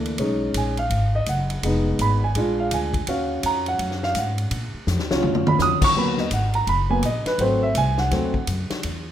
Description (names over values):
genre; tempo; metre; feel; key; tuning
jazz, big band swing; 166 BPM; 4/4; swing 64% on 8ths; Eb minor; A4 = 440 Hz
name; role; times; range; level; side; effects
warm grand piano; accompaniment; 0.0-8.4 s; E3 to Eb6; -22 LUFS; right 1 dB; none
upright bass; bass; 0.0-9.1 s; F1 to Bb2; -24 LUFS; equal; none
swinging big-band drum kit; drums; 0.1-8.9 s; crash cymbal, hi-hat, kick drum, ride cymbal, snare drum, toms; -27 LUFS; left 2 dB; none
room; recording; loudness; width
moderate large studio reverb, RT60 1.2 s; minimal, uncompressed stereo recording; -20 LUFS; side -10 dB against mid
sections
0.0-6.0 A section; 6.0-9.1 A section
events
grand piano solo 0.0-9.1; drum fill 4.9-5.6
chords
0.2 B69; 1.6 Fm7b5; 2.3 Bb7; 3.1 Ebm7; 6.0 G#m9; 7.4 G#7b9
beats
| 0.19 0.55 0.91 1.27 | 1.63 1.99 2.35 2.71 | 3.07 3.43 3.79 4.15 | 4.51 4.87 5.23 5.59 | 5.95 6.31 6.67 7.04 | 7.40 7.76 8.12 8.48 | 8.84